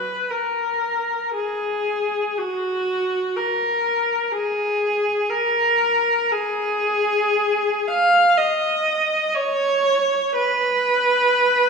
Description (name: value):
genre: classical, free, expressive piece for unaccompanied viola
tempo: free time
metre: none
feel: none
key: unclear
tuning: A4 = 440 Hz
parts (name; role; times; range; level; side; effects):
- warm viola; solo; 0.0-11.7 s; F#4 to E#5; -18 LUFS; equal; none
room: wet recital hall reverb, RT60 1.7 s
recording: recorded in a church or concert hall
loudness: -18 LUFS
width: side -5 dB against mid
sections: 0.0-11.7 A section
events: none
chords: none